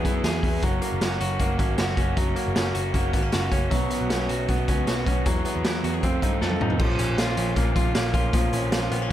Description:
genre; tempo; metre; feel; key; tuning
jangly indie pop; 156 BPM; 4/4; straight; F# mixolydian; A4 = 441 Hz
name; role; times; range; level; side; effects
raw garage guitar; accompaniment; 0.0-9.1 s; F2 to G#4; -29 LUFS; right 5 dB; overdrive
direct-recorded clean electric guitar; arpeggios; 0.0-9.1 s; E#3 to A4; -28 LUFS; left 4 dB; tape echo
vintage muted picked electric bass; bass; 0.0-9.1 s; F#1 to G2; -28 LUFS; equal; none
raw garage drum kit; drums; 0.0-9.0 s; crash cymbal, hi-hat, kick drum, snare drum, toms; -25 LUFS; equal; none
room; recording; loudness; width
light reverb; none; -21 LUFS; side -12 dB against mid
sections
0.0-6.8 A section; 6.8-9.1 B section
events
drum fill 6.4-6.8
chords
0.0 Eadd9; 0.6 F#; 3.7 Bsus2; 5.3 Eadd9; 6.0 F7; 6.8 A#m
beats
0.24 | 0.63 1.01 1.40 1.79 | 2.17 2.56 2.94 3.33 | 3.72 4.10 4.49 4.87 | 5.26 5.64 6.03 6.42 | 6.80 7.19 7.57 7.96 | 8.34 8.73 9.11

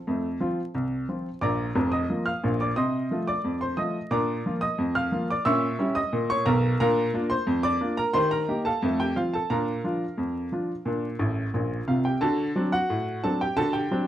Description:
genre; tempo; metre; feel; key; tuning
ragtime piano; 89 BPM; 2/4; straight; Bb major; A4 = 440 Hz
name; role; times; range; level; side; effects
clear upright piano; solo; 0.0-14.1 s; F1 to F6; -24 LUFS; equal; none
room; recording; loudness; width
wet club reverb, RT60 0.5 s; dark, warm production, vinyl crackle; -24 LUFS; side -12 dB against mid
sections
0.0-12.2 A section; 12.2-14.1 B section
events
upright piano fill 11.2-12.2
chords
0.0 F; 1.4 Bb; 2.8 F7/C; 4.1 Bb; 5.5 Bbdim7; 6.8 Bb; 8.1 Eb; 8.8 F; 9.5 Bb; 12.2 D7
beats
| 0.08 0.75 | 1.43 2.10 | 2.78 3.45 | 4.12 4.79 | 5.46 6.14 | 6.81 7.48 | 8.15 8.82 | 9.50 10.18 | 10.86 11.54 | 12.22 12.90 | 13.57

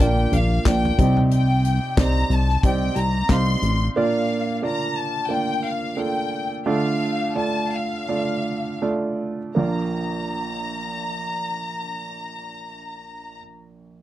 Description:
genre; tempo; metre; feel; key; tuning
piano-driven pop; 77-91 BPM; 4/4; swing 56% on 16ths; Bb major; A4 = 436 Hz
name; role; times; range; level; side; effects
clear studio violin section; melody; 0.0-13.4 s; F5 to C6; -27 LUFS; left 3 dB; none
warm baby grand piano; accompaniment; 0.0-14.0 s; Bb1 to F5; -24 LUFS; right 3 dB; none
chorused synth bass; bass; 0.0-3.9 s; A1 to C2; -20 LUFS; equal; none
natural country drum kit; drums; 0.0-3.8 s; handclaps, hi-hat, kick drum, snare drum, toms; -21 LUFS; left 1 dB; none
room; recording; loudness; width
little or no reverb; dry, close 1970s-style studio recording; -20 LUFS; side -14 dB against mid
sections
0.0-9.6 A section; 9.6-12.7 B section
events
slowing down 4.0-9.6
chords
0.0 Bb; 1.0 Cmadd9; 4.0 Bb; 6.6 Dm; 9.6 Bb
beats
0.65 | 1.31 1.97 2.63 3.29 | 3.95 4.62 5.28 5.96 | 6.65 7.35 8.07 8.81 | 9.57 10.35 11.12 11.90

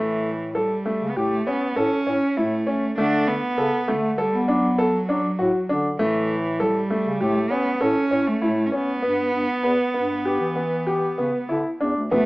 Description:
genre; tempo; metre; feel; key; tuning
contemporary instrumental, chamber music in an uneven meter; 99 BPM; 5/4; straight; A mixolydian; A4 = 440 Hz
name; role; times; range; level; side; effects
rich cello; melody; 0.0-12.3 s; E3 to D4; -25 LUFS; right 1 dB; none
clear baby grand piano; arpeggios; 0.0-12.3 s; A3 to B4; -23 LUFS; equal; none
mellow bass clarinet; bass; 0.0-12.3 s; D2 to B3; -27 LUFS; left 1 dB; none
frame drum; percussion; 12.1-12.3 s; none; -26 LUFS; right 1 dB; none
room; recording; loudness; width
light reverb; small speaker sound; -20 LUFS; side -21 dB against mid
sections
0.0-12.1 A section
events
none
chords
0.0 A; 3.0 D; 6.0 A7; 9.0 G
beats
0.55 1.16 1.76 2.37 | 2.97 3.58 4.18 4.78 5.39 | 5.99 6.60 7.21 7.81 8.42 | 9.03 9.64 10.26 10.87 11.50 | 12.12

